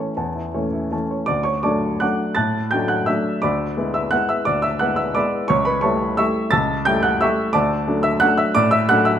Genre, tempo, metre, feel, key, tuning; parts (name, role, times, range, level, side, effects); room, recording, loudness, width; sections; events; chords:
classical, piano waltz; 157-186 BPM; 3/4; rubato; D major; A4 = 440 Hz
warm baby grand piano; solo; 0.0-9.2 s; C#2 to A6; -17 LUFS; equal
wet recital hall reverb, RT60 1.8 s; minimal, uncompressed stereo recording; -17 LUFS; side -9 dB against mid
0.0-1.3 A section; 1.3-9.2 B section
0.0 A; 1.3 D; 3.4 E7/D; 5.5 A7/C#; 7.6 D